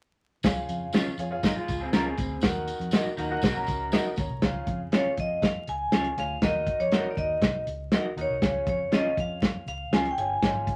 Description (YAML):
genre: uptempo 1960s-style soul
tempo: 120 BPM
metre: 4/4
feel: straight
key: Db major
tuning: A4 = 439 Hz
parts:
  - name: bright grand piano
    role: accompaniment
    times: 0.4-10.8 s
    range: Ab2 to Eb6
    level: -38 LUFS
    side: equal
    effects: none
  - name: vintage muted fingered electric bass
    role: bass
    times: 0.4-10.7 s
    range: G1 to F2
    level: -39 LUFS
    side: equal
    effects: none
  - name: warm soul drum kit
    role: drums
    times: 0.4-10.8 s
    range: hi-hat, kick drum, snare drum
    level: -28 LUFS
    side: equal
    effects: none
  - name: tambourine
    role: percussion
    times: 0.4-4.3 s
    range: none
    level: -44 LUFS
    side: equal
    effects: none
  - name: electric guitar through a small old amp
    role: stabs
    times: 0.9-10.1 s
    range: Db4 to Eb5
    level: -34 LUFS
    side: equal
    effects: none
  - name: electric guitar through a small old amp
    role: riff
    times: 1.4-4.3 s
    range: Gb3 to Bb4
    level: -35 LUFS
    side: equal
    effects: harmonic tremolo
  - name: vibraphone with medium hard mallets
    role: melody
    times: 5.0-10.8 s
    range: Db5 to Ab5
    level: -30 LUFS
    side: equal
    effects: none
room: wet small room ambience, RT60 0.5 s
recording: vinyl crackle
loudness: -27 LUFS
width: mono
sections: 0.4-4.4 A section; 4.4-10.8 B section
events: none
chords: 0.4 Db; 2.4 Ebm; 4.4 Db; 6.4 Ebm; 8.4 Db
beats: | 0.44 0.94 1.44 1.93 | 2.43 2.93 3.43 3.93 | 4.43 4.92 5.42 5.92 | 6.42 6.92 7.42 7.92 | 8.42 8.92 9.42 9.92 | 10.42